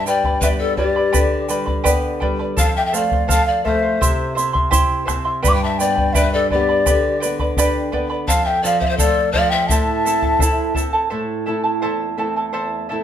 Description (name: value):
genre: andean folk, Andean ensemble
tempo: 84 BPM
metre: 2/4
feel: straight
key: A minor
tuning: A4 = 441 Hz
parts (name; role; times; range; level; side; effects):
- mellow hollow large quena; melody; 0.0-10.8 s; D5 to D6; -20 LUFS; left 1 dB; none
- breathy bright pan flute; second line; 0.0-10.8 s; G4 to B5; -23 LUFS; left 6 dB; none
- charango; accompaniment; 0.0-13.0 s; E4 to C6; -22 LUFS; right 2 dB; none
- nylon-string guitar; accompaniment; 0.0-13.0 s; E2 to E4; -24 LUFS; right 1 dB; none
- tube shaker; percussion; 0.1-10.9 s; none; -26 LUFS; right 7 dB; none
- bombo; percussion; 0.2-10.9 s; none; -21 LUFS; left 1 dB; none
room: wet stone room reverb, RT60 1.0 s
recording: band playing live in one room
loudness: -16 LUFS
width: side -9 dB against mid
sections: 0.0-11.1 A section; 11.1-13.0 B section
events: none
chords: 0.0 G; 2.6 F; 4.0 C; 5.4 G; 8.3 F; 9.7 Am